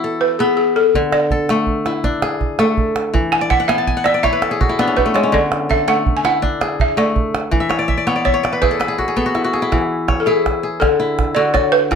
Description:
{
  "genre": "west african traditional, West African string and xylophone music",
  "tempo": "109 BPM (dotted quarters)",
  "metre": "12/8",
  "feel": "straight",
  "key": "D lydian",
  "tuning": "A4 = 442 Hz",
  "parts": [
    { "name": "kora", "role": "arpeggios", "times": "0.0-12.0 s", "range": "D3 to A5", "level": "-18 LUFS", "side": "left 2 dB", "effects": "none" },
    { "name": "balafon", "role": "melody", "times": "0.2-12.0 s", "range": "G#4 to G#5", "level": "-17 LUFS", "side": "equal", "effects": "slapback echo" },
    { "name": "calabash", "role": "percussion", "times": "0.9-12.0 s", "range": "none", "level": "-21 LUFS", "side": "right 3 dB", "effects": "none" }
  ],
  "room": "wet studio ambience, RT60 0.5 s",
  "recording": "none",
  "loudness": "-14 LUFS",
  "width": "side -6 dB against mid",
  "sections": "0.0-9.7 A section; 9.7-12.0 B section",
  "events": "balafon solo 0.0-9.7; kora fill 3.4-5.3, 7.6-9.7; drum fill 9.0-9.7",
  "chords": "0.0 E5; 0.9 D5; 3.1 E5; 5.3 D; 7.5 E5; 9.7 E; 10.8 D",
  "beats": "0.40 | 0.94 1.49 2.04 2.59 | 3.13 3.68 4.23 4.78 | 5.33 5.88 6.42 6.97 | 7.52 8.07 8.62 9.17 | 9.71 10.26 10.81 11.36 | 11.91"
}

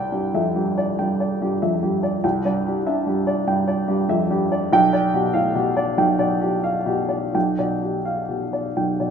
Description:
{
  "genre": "neoclassical minimalist piano",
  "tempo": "82-99 BPM",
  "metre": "4/4",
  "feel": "rubato",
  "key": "C major",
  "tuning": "A4 = 436 Hz",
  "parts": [
    { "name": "warm upright piano", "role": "solo", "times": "0.0-9.1 s", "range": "B1 to G5", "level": "-19 LUFS", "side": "equal", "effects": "none" }
  ],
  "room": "moderate recital hall reverb, RT60 1.4 s",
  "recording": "minimal, uncompressed stereo recording",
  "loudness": "-19 LUFS",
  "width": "side -7 dB against mid",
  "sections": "0.0-9.1 A section",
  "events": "none",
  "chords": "0.0 Cadd9; 4.7 G7/B",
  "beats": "0.34 0.98 1.61 | 2.23 2.86 3.49 4.10 | 4.73 5.35 5.98 6.64 | 7.34 8.05 8.76"
}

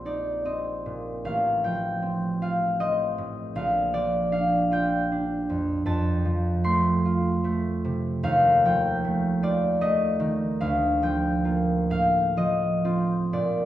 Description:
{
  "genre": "classical, solo harp piece",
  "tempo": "41-54 BPM (dotted quarters)",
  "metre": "6/8",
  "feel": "rubato",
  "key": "unclear",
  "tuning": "A4 = 440 Hz",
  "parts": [
    { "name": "concert harp", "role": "solo", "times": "0.0-13.7 s", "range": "A1 to C6", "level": "-22 LUFS", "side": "equal", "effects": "none" }
  ],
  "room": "wet recital hall reverb, RT60 1.6 s",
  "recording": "heard from further back in the room",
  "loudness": "-22 LUFS",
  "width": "side -13 dB against mid",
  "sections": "0.0-13.7 A section",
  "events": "none",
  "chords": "0.0 Cm7/Bb; 1.3 F/A; 3.6 Bb; 5.9 F; 8.2 F7/Eb; 10.6 Bb/D; 11.9 F7/A",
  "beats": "0.09 | 1.26 2.41 | 3.55 4.70 | 5.86 7.04 | 8.24 9.44 | 10.62 11.91 | 13.34"
}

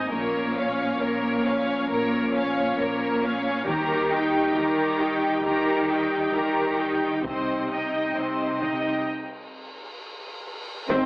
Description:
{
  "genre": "cinematic, epic orchestral film score",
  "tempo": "67 BPM",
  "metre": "4/4",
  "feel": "straight",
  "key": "unclear",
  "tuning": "A4 = 443 Hz",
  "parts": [
    { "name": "warm symphonic violin section", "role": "melody", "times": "0.0-11.1 s", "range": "C5 to Bb5", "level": "-32 LUFS", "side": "equal", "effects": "none" },
    { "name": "rich symphonic violin section", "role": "second line", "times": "0.0-11.1 s", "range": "G4 to Eb5", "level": "-29 LUFS", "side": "equal", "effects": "none" },
    { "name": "rich symphonic viola section", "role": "accompaniment", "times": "0.0-11.1 s", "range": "Bb3 to C5", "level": "-28 LUFS", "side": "equal", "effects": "none" },
    { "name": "mellow French horn section", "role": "sustained chords", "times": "0.0-11.1 s", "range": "F3 to Eb4", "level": "-28 LUFS", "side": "equal", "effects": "none" },
    { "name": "rich symphonic cello section", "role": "bass", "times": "0.1-11.0 s", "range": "Ab2 to Eb3", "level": "-30 LUFS", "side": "equal", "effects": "none" },
    { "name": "warm studio double bass section", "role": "bass", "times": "0.1-11.0 s", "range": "Ab1 to Eb2", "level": "-40 LUFS", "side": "equal", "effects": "none" },
    { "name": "taiko ensemble", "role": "drums", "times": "3.7-11.1 s", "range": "none", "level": "-35 LUFS", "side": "equal", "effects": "none" },
    { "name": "timpani", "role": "percussion", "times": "3.7-5.0 s", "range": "Eb3", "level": "-39 LUFS", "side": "equal", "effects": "none" },
    { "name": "cymbal swell and impact", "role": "sound effects", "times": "9.1-11.1 s", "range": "none", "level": "-38 LUFS", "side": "equal", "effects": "none" },
    { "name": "mellow hollow concert flute", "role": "second line", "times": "10.9-11.1 s", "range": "C5", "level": "-29 LUFS", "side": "left 1 dB", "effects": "none" },
    { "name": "mellow trombone section", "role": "sustained chords", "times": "10.9-11.1 s", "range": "Eb3 to Eb4", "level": "-29 LUFS", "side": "equal", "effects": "none" },
    { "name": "clear trumpet section", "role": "stabs", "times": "10.9-11.1 s", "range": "C5", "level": "-28 LUFS", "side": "equal", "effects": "none" },
    { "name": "warm tuba", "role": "bass", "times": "10.9-11.0 s", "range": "Ab1", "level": "-33 LUFS", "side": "equal", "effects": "none" },
    { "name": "tam-tam", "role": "percussion", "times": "10.9-11.1 s", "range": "none", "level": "barely audible", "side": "none", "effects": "none" }
  ],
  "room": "wet scoring stage reverb, RT60 1.7 s",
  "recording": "AM radio sound",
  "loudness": "-22 LUFS",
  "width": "side -25 dB against mid",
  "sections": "0.0-10.9 A section",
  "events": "break 9.1-10.9; cymbal swell 9.1-10.9; band accent 10.9; impact 10.9",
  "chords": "0.1 Bbm; 3.7 Eb; 7.2 Cm",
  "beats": "| 0.11 1.00 1.90 2.79 | 3.68 4.56 5.45 6.34 | 7.25 8.16 9.08 9.99 | 10.90"
}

